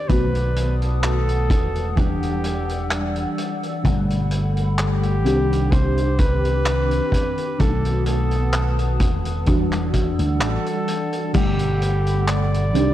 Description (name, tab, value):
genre	vaporwave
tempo	64 BPM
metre	4/4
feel	swing 54% on 16ths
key	G major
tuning	A4 = 440 Hz
part	clear flugelhorn	melody	0.0-12.9 s	G4 to D5	-28 LUFS	equal	tape echo
part	FM electric piano with soft pad layer	accompaniment	0.0-12.9 s	B2 to F#5	-25 LUFS	equal	tremolo, ensemble chorus, tape echo
part	warbly tape-like pad	sustained chords	0.0-12.9 s	C4 to E6	-32 LUFS	left 2 dB	chorus, built-in reverb
part	slap bass	bass	0.1-12.9 s	E1 to D2	-21 LUFS	equal	none
part	kick drum	drums	0.1-11.6 s	none	-20 LUFS	equal	vintage 12-bit sampler grit
part	vintage drum kit	drums	0.1-12.9 s	crash cymbal, handclaps, hi-hat	-30 LUFS	equal	vintage 12-bit sampler grit
room	light reverb, studio reverb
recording	dark, warm production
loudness	-18 LUFS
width	side -13 dB against mid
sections	0.0-11.3 A section; 11.3-12.9 B section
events	none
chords	0.1 B7; 2.0 Em9; 3.8 Gmaj9; 5.3 Cmadd9; 7.6 B7; 9.5 Em9; 11.3 Gmaj9